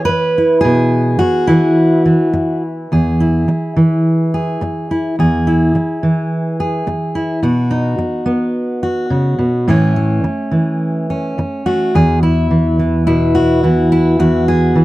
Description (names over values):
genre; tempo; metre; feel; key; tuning
folk, solo fingerstyle acoustic guitar; 106 BPM; 4/4; straight; E major; A4 = 437 Hz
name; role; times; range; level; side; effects
fingerpicked steel-string acoustic guitar; solo; 0.0-14.8 s; E2 to C#5; -12 LUFS; equal; none
room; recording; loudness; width
light reverb; dry, close 1970s-style studio recording; -12 LUFS; side -17 dB against mid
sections
0.0-2.9 A section; 2.9-11.9 B section; 11.9-14.8 C section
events
none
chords
0.0 E/B; 2.9 E; 7.4 B; 9.7 A; 11.9 E